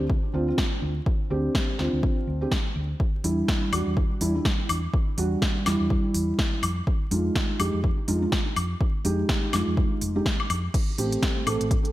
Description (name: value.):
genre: deep house.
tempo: 124 BPM.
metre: 4/4.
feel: swing 58% on 16ths.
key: unclear.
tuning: A4 = 440 Hz.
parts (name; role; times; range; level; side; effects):
felt-muted upright piano; stabs; 0.0-11.6 s; G3 to A4; -28 LUFS; right 1 dB; sidechain pumping, digital delay.
hollow-body short-scale fingered electric bass; bass; 0.0-11.7 s; F1 to F2; -28 LUFS; equal; sidechain pumping.
electronic kick drum; drums; 0.1-11.8 s; none; -25 LUFS; equal; none.
deep house drum kit; drums; 0.6-11.9 s; crash cymbal, hi-hat, snare drum, woodblock; -29 LUFS; left 1 dB; gated reverb.
room: light reverb, digital ambience.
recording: bright 1980s-style digital production, vinyl crackle.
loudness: -22 LUFS.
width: side -15 dB against mid.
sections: 0.0-11.9 A section.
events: none.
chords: 0.0 Dm7; 3.0 Em7; 6.6 Fm7; 10.7 Am7.